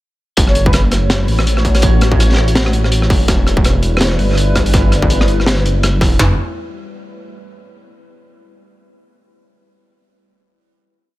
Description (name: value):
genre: half-time drum and bass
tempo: 165 BPM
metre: 4/4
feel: swing 57% on 16ths, half-time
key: F# phrygian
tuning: A4 = 444 Hz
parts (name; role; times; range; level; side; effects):
- dark analog pad; sustained chords; 0.8-6.4 s; G3 to C#5; -23 LUFS; equal; chorus, phaser, sidechain pumping
- dark detuned saw bass; bass; 0.4-6.4 s; E1 to A1; -15 LUFS; equal; none
- crunchy breakbeat drum kit; drums; 0.4-6.1 s; hi-hat, rim click, snare drum; -18 LUFS; equal; none
- industrial drum kit; drums; 0.4-6.3 s; kick drum, snare drum, toms; -14 LUFS; equal; distortion
- silver concert flute; melody; 0.5-0.8 s; B4 to C#5; -26 LUFS; equal; tape echo
room: small room ambience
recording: none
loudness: -11 LUFS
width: side -17 dB against mid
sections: 0.4-6.2 drop; 6.2-7.6 final chord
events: drop 0.4-6.2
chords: 0.4 F#m; 3.3 Em; 6.2 F#m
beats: | 0.37 0.74 1.10 1.47 | 1.83 2.19 2.56 2.92 | 3.28 3.65 4.01 4.37 | 4.74 5.10 5.46 5.83 | 6.19